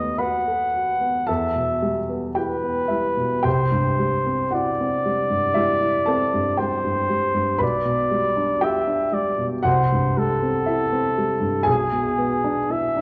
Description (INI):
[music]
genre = classical, romantic duo for trumpet and grand piano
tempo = 54-60 BPM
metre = 4/4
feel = rubato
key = unclear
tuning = A4 = 440 Hz
[part]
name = mellow trumpet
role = melody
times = 0.0-13.0 s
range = G#4 to F#5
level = -25 LUFS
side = equal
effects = none
[part]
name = dark baby grand piano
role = accompaniment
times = 0.0-13.0 s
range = B1 to D#6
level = -25 LUFS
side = equal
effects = none
[sound]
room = wet recital hall reverb, RT60 1.4 s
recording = worn, warbling old tape, cassette tape, warbly pitch drift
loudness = -22 LUFS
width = mono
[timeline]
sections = 0.0-13.0 A section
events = none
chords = 0.0 B7/D#; 1.3 Em; 3.5 C; 7.6 G7/B; 9.7 C; 11.7 E7/B